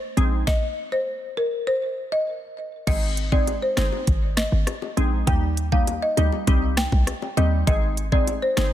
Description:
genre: dancehall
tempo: 100 BPM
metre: 4/4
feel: straight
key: unclear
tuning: A4 = 440 Hz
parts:
  - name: glassy wavetable pluck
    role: accompaniment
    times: 0.2-8.7 s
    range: G3 to Ab4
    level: -27 LUFS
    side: equal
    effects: chorus
  - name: short 808-style bass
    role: bass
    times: 0.2-8.7 s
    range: G1 to Eb2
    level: -23 LUFS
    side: equal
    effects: none
  - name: island pop drum kit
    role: drums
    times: 0.2-8.7 s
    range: crash cymbal, hi-hat, kick drum, rim click, snare drum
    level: -23 LUFS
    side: equal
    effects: overdrive
  - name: folk marimba with medium mallets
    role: melody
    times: 0.5-8.7 s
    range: Bb4 to G5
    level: -26 LUFS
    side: left 1 dB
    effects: digital delay
  - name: bongos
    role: percussion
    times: 3.5-8.7 s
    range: none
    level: -35 LUFS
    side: left 11 dB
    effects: none
room: digital ambience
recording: dense, heavily limited modern master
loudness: -20 LUFS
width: side -12 dB against mid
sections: 0.0-2.9 A section; 2.9-8.7 B section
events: stop 0.5-2.9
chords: 0.5 N.C.; 2.9 Ab; 5.3 Eb; 6.5 Cm; 7.7 Ab

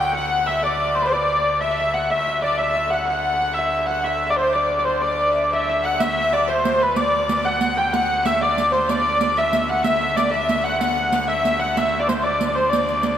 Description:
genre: medieval dance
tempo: 124 BPM (dotted quarters)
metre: 6/8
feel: straight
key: D mixolydian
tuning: A4 = 440 Hz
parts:
  - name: dark hurdy-gurdy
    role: melody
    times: 0.0-13.2 s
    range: B4 to G5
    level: -20 LUFS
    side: equal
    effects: none
  - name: clear fiddle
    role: second line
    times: 0.0-13.2 s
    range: B4 to G5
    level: -27 LUFS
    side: left 3 dB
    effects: none
  - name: concert harp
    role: second line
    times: 0.0-13.2 s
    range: B4 to G5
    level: -28 LUFS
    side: right 3 dB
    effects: none
  - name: pipe organ, trumpet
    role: drone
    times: 0.0-13.2 s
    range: D2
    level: -29 LUFS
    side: left 3 dB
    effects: none
  - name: riq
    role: percussion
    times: 6.0-13.2 s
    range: none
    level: -26 LUFS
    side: right 5 dB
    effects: none
room: wet concert hall reverb, RT60 1.8 s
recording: none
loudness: -18 LUFS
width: side -10 dB against mid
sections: 0.0-6.0 A section; 6.0-13.2 A section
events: none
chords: none

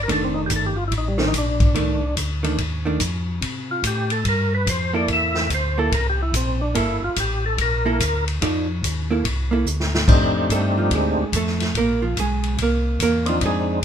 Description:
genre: soul jazz organ trio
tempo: 144 BPM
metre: 4/4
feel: swing 64% on 8ths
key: F major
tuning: A4 = 440 Hz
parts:
  - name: percussive tonewheel organ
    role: melody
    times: 0.0-13.8 s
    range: G3 to E5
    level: -23 LUFS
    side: left 1 dB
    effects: slow rotary speaker, overdrive, chorus vibrato
  - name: mellow tonewheel organ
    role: bass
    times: 0.0-13.8 s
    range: F1 to C3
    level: -24 LUFS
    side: equal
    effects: slow rotary speaker
  - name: vintage hollow-body jazz guitar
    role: accompaniment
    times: 0.1-13.8 s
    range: Eb3 to D5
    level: -23 LUFS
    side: right 4 dB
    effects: none
  - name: vintage drum kit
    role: drums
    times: 0.1-13.5 s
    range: crash cymbal, hi-hat, kick drum, ride cymbal, snare drum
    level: -24 LUFS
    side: equal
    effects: none
room: moderate studio reverb, RT60 0.7 s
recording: minimal, uncompressed stereo recording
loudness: -19 LUFS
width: side -8 dB against mid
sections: 0.0-10.1 A section; 10.1-13.8 A section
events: tonewheel organ solo 0.0-10.1; drum fill 9.7-10.1; hollow-body jazz guitar solo 10.1-13.8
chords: 0.1 F13; 3.4 C13; 8.4 F6; 9.3 C13; 10.1 F13; 11.7 Bb7sus2

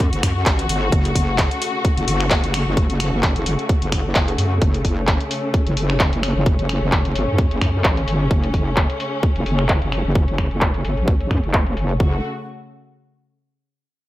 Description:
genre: bass house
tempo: 130 BPM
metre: 4/4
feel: swing 55% on 16ths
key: F# phrygian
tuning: A4 = 440 Hz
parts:
  - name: muted symphonic string section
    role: sustained chords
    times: 0.0-12.2 s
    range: C#3 to F#4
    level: -25 LUFS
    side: left 2 dB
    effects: sidechain pumping
  - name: wobble bass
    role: bass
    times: 0.0-12.2 s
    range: F#1 to F#2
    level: -21 LUFS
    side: equal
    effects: chorus, tube saturation, sidechain pumping
  - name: electronic kick drum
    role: drums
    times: 0.0-12.1 s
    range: none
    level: -19 LUFS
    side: equal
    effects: small room ambience
  - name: house drum kit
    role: drums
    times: 0.0-12.0 s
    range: finger snaps, handclaps, hi-hat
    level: -23 LUFS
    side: equal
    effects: low-pass filter on hats, small room ambience, low-pass filter on perc, low-pass filter on cymbals, low-pass filter on snare
room: light reverb, digital ambience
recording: none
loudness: -17 LUFS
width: side -16 dB against mid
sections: 0.0-12.0 A section; 12.0-13.8 B section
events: filter sweep on drum 0.0-12.0; filter sweep on wobble bass 0.0-12.0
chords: 0.0 F#m

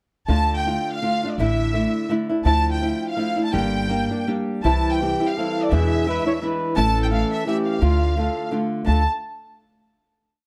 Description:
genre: mexican folk, mariachi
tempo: 168 BPM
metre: 3/4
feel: swing 55% on 8ths, rubato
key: D minor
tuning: A4 = 440 Hz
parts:
  - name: warm symphonic violin section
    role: melody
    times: 0.3-9.0 s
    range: D5 to A5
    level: -28 LUFS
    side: equal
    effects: plate reverb
  - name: flamenco guitar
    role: accompaniment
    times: 0.3-9.0 s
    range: E2 to G4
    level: -25 LUFS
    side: equal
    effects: none
  - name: upright bass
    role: bass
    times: 0.3-9.1 s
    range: G1 to E2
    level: -24 LUFS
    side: equal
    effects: none
  - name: breathy trumpet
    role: second line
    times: 4.6-9.1 s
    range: E4 to C#5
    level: -29 LUFS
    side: equal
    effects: none
room: moderate small room reverb, RT60 0.5 s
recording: dark, warm production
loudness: -22 LUFS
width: mono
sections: 0.3-8.9 A section; 8.9-9.9 final chord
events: none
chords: 0.3 Dm; 1.4 Asus4; 2.5 Dmadd9; 3.5 Gm; 4.6 C; 5.7 E7; 6.8 A; 7.8 Dm

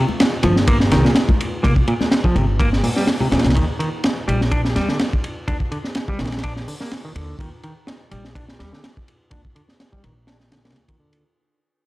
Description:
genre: breakbeat, breaks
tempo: 125 BPM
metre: 4/4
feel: swing 54% on 16ths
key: unclear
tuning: A4 = 442 Hz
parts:
  - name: semi-hollow electric guitar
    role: riff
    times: 0.0-11.2 s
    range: Bb2 to D4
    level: -23 LUFS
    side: equal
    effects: spring reverb, low-pass filter, tape echo
  - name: congas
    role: percussion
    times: 0.1-3.3 s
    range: none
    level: -27 LUFS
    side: left 3 dB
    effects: none
  - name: crunchy breakbeat drum kit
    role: drums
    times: 0.2-11.2 s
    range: hi-hat, kick drum, ride cymbal, snare drum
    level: -19 LUFS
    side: equal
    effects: none
  - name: upright bass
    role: bass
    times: 0.4-11.2 s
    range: G1 to Eb2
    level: -21 LUFS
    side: equal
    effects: tube saturation
room: light reverb, studio ambience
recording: dry, gritty hardware recording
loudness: -16 LUFS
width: side -18 dB against mid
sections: 0.0-11.2 A section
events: fade-out 0.0-11.2; filter sweep on clean electric guitar 0.0-11.2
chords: 0.0 C7(no3); 3.6 Ebmaj7

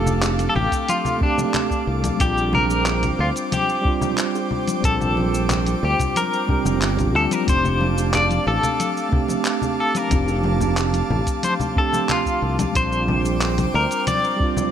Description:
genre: sunset chillout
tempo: 91 BPM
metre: 4/4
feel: straight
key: F major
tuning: A4 = 440 Hz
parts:
  - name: clean electric guitar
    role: melody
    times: 0.0-14.7 s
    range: D4 to D5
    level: -23 LUFS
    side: left 2 dB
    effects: tremolo, tape echo, shimmer reverb
  - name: mellow tine electric piano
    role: accompaniment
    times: 0.0-14.7 s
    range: F3 to G4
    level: -24 LUFS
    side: moving between left 6 dB and right 9 dB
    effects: auto-pan, tape echo, shimmer reverb
  - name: airy breathy pad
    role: sustained chords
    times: 0.0-14.7 s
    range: A4 to D6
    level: -28 LUFS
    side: right 2 dB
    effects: chorus, shimmer reverb
  - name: fingered electric bass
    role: bass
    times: 0.0-13.8 s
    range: F1 to D2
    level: -23 LUFS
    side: equal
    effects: none
  - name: dusty soul sampler-style drum kit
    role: drums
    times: 0.1-14.7 s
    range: congas, handclaps, hi-hat, shaker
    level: -26 LUFS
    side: left 2 dB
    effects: studio reverb
  - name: bongos and congas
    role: percussion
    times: 0.1-14.7 s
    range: none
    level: -30 LUFS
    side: left 3 dB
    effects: none
  - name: electronic kick drum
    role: drums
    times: 0.7-14.5 s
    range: none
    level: -23 LUFS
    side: equal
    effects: overdrive, studio reverb
room: light reverb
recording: none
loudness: -18 LUFS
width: side -9 dB against mid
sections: 0.0-14.7 A section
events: none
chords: 0.0 F6; 2.2 Bb69; 7.5 F6; 12.8 Bb69

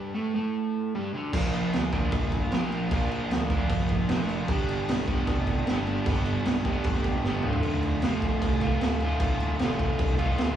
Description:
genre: garage rock duo or trio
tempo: 152 BPM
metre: 4/4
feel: straight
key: unclear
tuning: A4 = 439 Hz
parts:
  - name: crunchy overdriven guitar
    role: riff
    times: 0.0-10.6 s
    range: D2 to Bb4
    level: -28 LUFS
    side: right 1 dB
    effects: none
  - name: fuzz picked electric bass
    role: bass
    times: 1.3-10.6 s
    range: D1 to D2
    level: -32 LUFS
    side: equal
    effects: overdrive, tube saturation
  - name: raw garage drum kit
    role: drums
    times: 1.3-10.5 s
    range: crash cymbal, kick drum, snare drum, toms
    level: -28 LUFS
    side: right 1 dB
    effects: none
room: light reverb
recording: band playing live in one room, small room ambience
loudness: -24 LUFS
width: side -10 dB against mid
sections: 0.0-1.3 A section; 1.3-10.6 B section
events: break 0.0-1.3; drum fill 7.2-7.6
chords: 0.0 D5; 1.3 Bb; 4.5 G; 7.4 Dm

